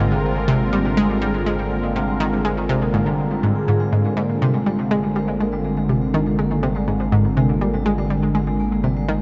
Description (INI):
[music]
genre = ambient, sequencer-driven space music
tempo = 122 BPM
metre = 4/4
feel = straight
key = Ab lydian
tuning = A4 = 440 Hz
[part]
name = phased analog pad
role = sustained chords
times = 0.0-9.2 s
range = D3 to Bb4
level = -26 LUFS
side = equal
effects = phaser, chorus
[part]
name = vibraphone with medium mallets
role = arpeggios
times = 0.0-9.2 s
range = G3 to Ab4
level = -26 LUFS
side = equal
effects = analog delay
[part]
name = analog pluck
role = riff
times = 0.0-9.2 s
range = Ab2 to Ab3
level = -24 LUFS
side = equal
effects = chorus, analog delay
[part]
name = round analog bass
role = bass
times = 0.0-9.2 s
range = Ab1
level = -30 LUFS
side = equal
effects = none
[sound]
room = wet huge ambient reverb, RT60 8.9 s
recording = nothing above 7.8 kHz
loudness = -20 LUFS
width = mono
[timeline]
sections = 0.0-9.2 A section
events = none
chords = 0.0 Abmaj7